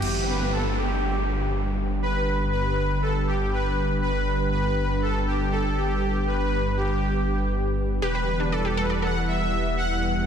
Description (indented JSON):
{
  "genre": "house",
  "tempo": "120 BPM",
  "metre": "4/4",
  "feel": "straight",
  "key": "G major",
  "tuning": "A4 = 439 Hz",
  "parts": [
    { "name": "soft supersaw", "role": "melody", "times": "0.0-10.2 s", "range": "G4 to F#5", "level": "-27 LUFS", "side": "equal", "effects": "tape echo" },
    { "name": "lush unison pad", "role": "sustained chords", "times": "0.0-10.3 s", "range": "D3 to F#5", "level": "-28 LUFS", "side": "right 1 dB", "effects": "chorus" },
    { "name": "dark detuned saw bass", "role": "bass", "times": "0.0-10.3 s", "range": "E1 to G1", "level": "-27 LUFS", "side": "equal", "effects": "tube saturation" },
    { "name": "downlifter", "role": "sound effects", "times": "0.0-4.0 s", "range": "none", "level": "-34 LUFS", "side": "equal", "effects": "none" },
    { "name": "wide unison pluck", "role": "arpeggios", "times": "8.0-9.1 s", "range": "D4 to D5", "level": "-32 LUFS", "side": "equal", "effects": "dub echo" }
  ],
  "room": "moderate lush hall reverb, RT60 1.8 s",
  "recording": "dense, heavily limited modern master",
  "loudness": "-22 LUFS",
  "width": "side -8 dB against mid",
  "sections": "0.0-10.3 A section",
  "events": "none",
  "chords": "0.0 G; 8.0 Emadd9"
}